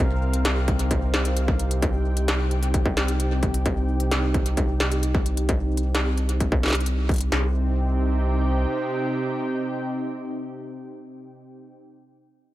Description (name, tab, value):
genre	IDM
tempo	131 BPM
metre	4/4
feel	straight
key	C minor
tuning	A4 = 437 Hz
part	warm analog pad	sustained chords	0.0-11.7 s	C3 to G5	-28 LUFS	equal	lush chorus
part	round analog bass	bass	0.0-8.7 s	C2	-23 LUFS	equal	none
part	industrial drum kit	drums	0.3-7.3 s	hi-hat, snare drum	-27 LUFS	equal	digital delay
part	industrial drum kit	drums	0.7-7.4 s	kick drum, snare drum	-24 LUFS	equal	distortion
room	light reverb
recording	none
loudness	-21 LUFS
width	side -15 dB against mid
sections	0.0-7.3 A section; 7.3-11.0 B section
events	filter sweep on analog synth pad 0.0-7.3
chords	0.0 Cm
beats	0.45 0.91 1.37 | 1.82 2.28 2.74 3.20 | 3.66 4.11 4.57 5.03 | 5.49 5.95 6.40 6.86 | 7.32 7.78 8.24 8.69 | 9.15 9.61 10.07 10.53